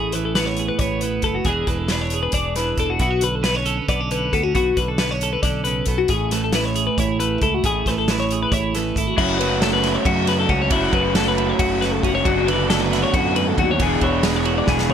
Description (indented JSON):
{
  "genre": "math rock and midwest emo",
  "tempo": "272 BPM (eighths)",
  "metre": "7/8",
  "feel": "straight",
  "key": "A major",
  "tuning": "A4 = 440 Hz",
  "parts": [
    { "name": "twelve-string electric guitar", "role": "accompaniment", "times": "0.0-14.9 s", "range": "E2 to A4", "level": "-24 LUFS", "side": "right 8 dB", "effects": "none" },
    { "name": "twelve-string electric guitar", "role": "arpeggios", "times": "0.0-14.9 s", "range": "E4 to D5", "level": "-22 LUFS", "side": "left 6 dB", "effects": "vibrato effect" },
    { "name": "modern bright fingered electric bass", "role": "bass", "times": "0.0-14.9 s", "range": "E1 to F#2", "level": "-25 LUFS", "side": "equal", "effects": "none" },
    { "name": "loose indie drum kit", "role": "drums", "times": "0.1-14.9 s", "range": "crash cymbal, hi-hat, kick drum, ride cymbal, snare drum, toms", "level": "-24 LUFS", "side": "equal", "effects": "none" },
    { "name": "raw garage guitar", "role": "riff", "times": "9.2-14.9 s", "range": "E3 to G#4", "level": "-22 LUFS", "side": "equal", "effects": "overdrive" }
  ],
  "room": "little or no reverb",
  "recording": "none",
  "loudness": "-17 LUFS",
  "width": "side -8 dB against mid",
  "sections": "0.0-9.2 A section; 9.2-14.9 B section",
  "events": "drum fill 14.7",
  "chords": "0.0 Amaj9; 1.5 E7; 3.0 Bm9; 6.1 Amaj9; 9.2 F#m7; 12.3 Bm7/F#; 13.8 E7"
}